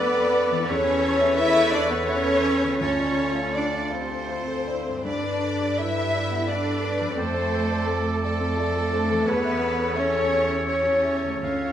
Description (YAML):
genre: cinematic, emotional film score for orchestra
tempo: 78-88 BPM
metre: 3/4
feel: rubato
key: D dorian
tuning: A4 = 440 Hz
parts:
  - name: warm studio violin section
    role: melody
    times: 0.0-11.7 s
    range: A4 to E5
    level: -30 LUFS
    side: left 1 dB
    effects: none
  - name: clear clarinet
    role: second line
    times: 0.0-11.7 s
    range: F4 to A4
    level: -34 LUFS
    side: left 1 dB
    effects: none
  - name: clear oboe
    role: second line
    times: 0.0-11.7 s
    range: A4 to F5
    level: -31 LUFS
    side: right 2 dB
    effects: none
  - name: mellow hollow concert flute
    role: second line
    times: 0.0-11.7 s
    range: A4 to E5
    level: -31 LUFS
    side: left 1 dB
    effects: none
  - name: rich studio violin section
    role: second line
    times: 0.0-11.7 s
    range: A4 to E5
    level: -30 LUFS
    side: left 1 dB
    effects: none
  - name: felt-muted upright piano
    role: accompaniment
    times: 0.0-11.7 s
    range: D2 to F5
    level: -31 LUFS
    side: left 1 dB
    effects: none
  - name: warm studio viola section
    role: accompaniment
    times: 0.0-11.7 s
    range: D4 to D5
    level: -34 LUFS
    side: right 1 dB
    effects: none
  - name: mellow French horn section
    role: sustained chords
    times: 0.0-11.7 s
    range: A3 to E4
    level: -31 LUFS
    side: left 3 dB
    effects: none
  - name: concert harp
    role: arpeggios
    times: 0.0-11.7 s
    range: G2 to F5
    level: -39 LUFS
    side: left 8 dB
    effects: none
  - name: rich studio cello section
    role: bass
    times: 0.0-11.7 s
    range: A3 to E4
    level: -28 LUFS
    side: right 2 dB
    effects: none
  - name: warm studio double bass section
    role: bass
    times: 0.0-11.7 s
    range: D2 to G2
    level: -32 LUFS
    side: right 3 dB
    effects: none
room: wet recital hall reverb, RT60 1.8 s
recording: none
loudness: -21 LUFS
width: side -10 dB against mid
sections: 0.0-11.7 A section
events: none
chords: 0.0 Dm/F; 0.7 Aadd9/E; 2.8 Dm7; 5.1 Gadd9; 7.2 Dm7/F; 9.3 Aadd9/E